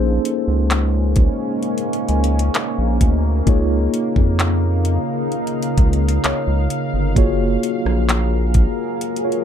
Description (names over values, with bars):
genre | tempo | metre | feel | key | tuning
contemporary R&B | 65 BPM | 4/4 | straight | Bb minor | A4 = 440 Hz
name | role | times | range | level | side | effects
mellow tine electric piano | accompaniment | 0.0-9.4 s | Bb3 to Db5 | -23 LUFS | equal | medium stereo tremolo
deep dark ambient pad | sustained chords | 0.0-9.4 s | Db3 to F5 | -23 LUFS | equal | chorus, built-in reverb
round analog bass | bass | 0.0-8.7 s | Gb1 to F2 | -18 LUFS | equal | none
smooth R&B drum kit | drums | 0.3-9.4 s | handclaps, hi-hat, kick drum, rim click | -18 LUFS | equal | none
large celesta | texture | 2.1-7.6 s | Db5 to Ab5 | -31 LUFS | left 4 dB | digital delay
room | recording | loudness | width
light reverb | dark, warm production | -16 LUFS | side -9 dB against mid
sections
0.0-9.4 A section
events
tine electric piano fill 9.0-9.4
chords
0.0 Bbm11; 3.5 Db69; 7.2 Gbmaj9